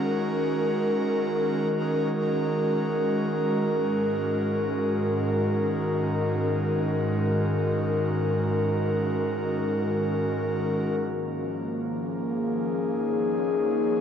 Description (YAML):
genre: ambient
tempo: free time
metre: none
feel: none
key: unclear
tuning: A4 = 439 Hz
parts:
  - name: airy breathy pad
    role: solo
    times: 0.0-14.0 s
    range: G#2 to C#5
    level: -24 LUFS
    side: equal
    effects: chorus
room: wet cathedral reverb, RT60 6.2 s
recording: worn, warbling old tape, cassette tape, warbly pitch drift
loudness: -24 LUFS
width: side -8 dB against mid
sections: 0.0-11.0 A section; 11.0-14.0 B section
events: none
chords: 0.0 G#5; 3.7 F#add9/G#; 11.0 C#69